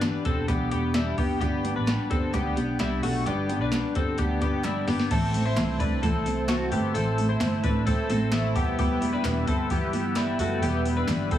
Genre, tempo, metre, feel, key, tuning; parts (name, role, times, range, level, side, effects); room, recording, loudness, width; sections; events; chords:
jangly indie pop; 130 BPM; 4/4; straight; A4 = 439 Hz
picked steel-string acoustic guitar; accompaniment; 0.0-11.4 s; A2 to G4; -28 LUFS; right 2 dB
twelve-string electric guitar; arpeggios; 0.0-11.4 s; G3 to C5; -29 LUFS; left 4 dB; analog chorus, tape echo
vintage muted fingered electric bass; bass; 0.0-11.4 s; E1 to D2; -30 LUFS; equal
soft vintage rhythm box; drums; 0.0-11.4 s; crash cymbal, hi-hat, kick drum, snare drum; -29 LUFS; equal
group handclap; percussion; 0.0-11.2 s; -41 LUFS; right 4 dB
phased analog pad; sustained chords; 5.1-11.4 s; B4 to E6; -35 LUFS; right 1 dB; phaser, chorus
light reverb; heavily compressed radio sound; -23 LUFS; side -11 dB against mid
0.0-5.1 A section; 5.1-11.4 B section
drum fill 4.6-5.1
0.0 Em7; 1.4 G; 8.6 Em